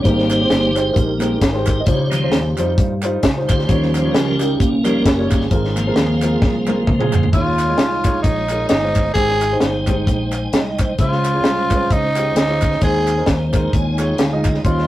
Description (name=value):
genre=uptempo gospel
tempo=132 BPM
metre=4/4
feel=swing 57% on 8ths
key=Ab major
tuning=A4 = 441 Hz
part: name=warm baby grand piano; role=accompaniment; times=0.0-14.9 s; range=Ab2 to Eb5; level=-24 LUFS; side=equal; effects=none
part: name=tonewheel organ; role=sustained chords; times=0.0-14.9 s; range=Eb3 to Bb5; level=-21 LUFS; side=right 1 dB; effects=fast rotary speaker, overdrive, chorus vibrato
part: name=fingered electric bass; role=bass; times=0.0-14.9 s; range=Gb1 to G2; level=-22 LUFS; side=equal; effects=none
part: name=tight funk drum kit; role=drums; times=0.1-14.8 s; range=hi-hat, kick drum, snare drum, toms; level=-18 LUFS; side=equal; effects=none
part: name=group handclap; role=percussion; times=0.3-14.5 s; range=none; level=-31 LUFS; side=right 2 dB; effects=none
part: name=growling tenor saxophone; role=melody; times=7.3-14.9 s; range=Eb4 to Ab4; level=-18 LUFS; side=equal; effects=none
room=moderate booth ambience, RT60 0.3 s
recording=rough rehearsal-room recording, warm saturation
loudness=-14 LUFS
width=side -14 dB against mid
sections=0.0-7.3 A section; 7.3-14.9 B section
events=tonewheel organ solo 0.0-7.3; drum fill 6.4-7.3; tonewheel organ fill 10.1-11.0, 13.3-14.6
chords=0.0 Abmaj9; 1.9 Dbmaj9#11; 3.7 Eb9; 5.5 Ab69; 7.3 Eb9sus4; 9.2 Abmaj7; 11.0 Dbmaj7; 12.8 Ab/Eb; 13.7 Eb9sus4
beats=| 0.05 0.50 0.96 1.41 | 1.87 2.32 2.78 3.23 | 3.69 4.14 4.60 5.05 | 5.51 5.96 6.42 6.88 | 7.33 7.79 8.24 8.70 | 9.16 9.62 10.07 10.53 | 10.99 11.44 11.90 12.36 | 12.81 13.27 13.73 14.19 | 14.64